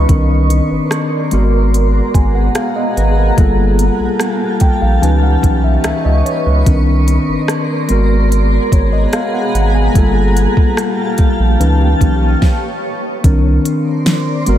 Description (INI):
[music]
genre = contemporary R&B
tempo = 73 BPM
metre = 4/4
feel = straight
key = unclear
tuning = A4 = 438 Hz
[part]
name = mellow tine electric piano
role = accompaniment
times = 0.0-14.6 s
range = Eb3 to Ab5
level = -17 LUFS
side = left 2 dB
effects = medium stereo tremolo
[part]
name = granular cloud pad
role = sustained chords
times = 0.0-14.6 s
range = Bb3 to Db6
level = -19 LUFS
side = right 1 dB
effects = built-in reverb
[part]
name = saturated sub bass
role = bass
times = 0.0-14.6 s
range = G1 to Db2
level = -13 LUFS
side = equal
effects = none
[part]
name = smooth R&B drum kit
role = drums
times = 0.1-14.6 s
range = hi-hat, kick drum, rim click, snare drum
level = -15 LUFS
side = equal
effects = none
[sound]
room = light reverb, digital ambience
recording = none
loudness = -11 LUFS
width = side -11 dB against mid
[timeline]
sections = 0.0-13.2 A section; 13.2-14.6 B section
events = tine electric piano fill 4.2-6.7; stop 12.4-13.2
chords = 0.1 Cm9; 1.3 Abm9; 3.4 Gm9; 5.0 Dbm9; 6.7 Cm9; 7.9 Abm9; 10.0 Gm9; 11.6 Dbm9; 13.2 Cm9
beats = | 0.09 0.91 1.73 2.56 | 3.38 4.20 5.02 5.84 | 6.67 7.49 8.31 9.13 | 9.95 10.78 11.60 12.42 | 13.24 14.06